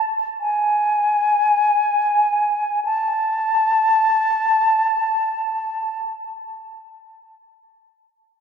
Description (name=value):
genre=classical, free, expressive piece for unaccompanied flute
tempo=18-36 BPM (dotted quarters)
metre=6/8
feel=rubato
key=unclear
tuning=A4 = 442 Hz
part: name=silver concert flute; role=solo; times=0.0-6.0 s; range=G#5 to A5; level=-17 LUFS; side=equal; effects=none
room=wet church reverb, RT60 3.6 s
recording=dark, warm production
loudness=-17 LUFS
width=side -6 dB against mid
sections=0.0-2.8 A section; 2.8-6.7 B section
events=slowing down 0.0-2.8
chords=none